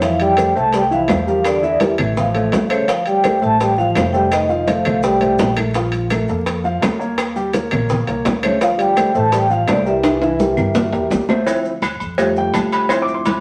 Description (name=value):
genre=Afro-Cuban jazz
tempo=168 BPM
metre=4/4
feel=straight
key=F major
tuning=A4 = 439 Hz
part: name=vibraphone with medium mallets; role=melody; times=0.0-5.5, 8.4-11.1 s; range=C#5 to A5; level=-21 LUFS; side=equal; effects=none
part: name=breathy trombone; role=second line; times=0.0-5.5, 8.4-11.1 s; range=C#3 to A3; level=-25 LUFS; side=equal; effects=none
part: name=dark upright piano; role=accompaniment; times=0.0-13.4 s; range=E3 to D6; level=-22 LUFS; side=equal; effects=none
part: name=upright bass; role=bass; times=0.0-13.4 s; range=F1 to G2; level=-27 LUFS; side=equal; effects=none
part: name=bongos and cowbell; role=percussion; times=0.0-13.4 s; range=none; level=-26 LUFS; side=equal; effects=none
part: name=congas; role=percussion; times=0.0-13.4 s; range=none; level=-27 LUFS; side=equal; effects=none
part: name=maracas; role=percussion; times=0.0-13.4 s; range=none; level=-42 LUFS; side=equal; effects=none
part: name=timbales and agogo bells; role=percussion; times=0.0-13.4 s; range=none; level=-27 LUFS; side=equal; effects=none
part: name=claves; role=percussion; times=0.4-13.1 s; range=none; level=-34 LUFS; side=equal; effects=none
room=moderate studio reverb, RT60 0.9 s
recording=vinyl crackle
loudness=-17 LUFS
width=mono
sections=0.0-11.5 A section; 11.5-13.4 B section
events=drum fill 10.0-11.5; upright piano solo 11.5-13.4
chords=0.0 Fmaj7; 1.5 Em7b5; 2.2 Aaug; 2.9 Dm7; 4.3 F9; 5.8 Bb5; 7.2 Eb6; 8.6 Dm7; 10.0 C7; 11.5 Dm7; 12.2 Fadd9; 12.9 Dm7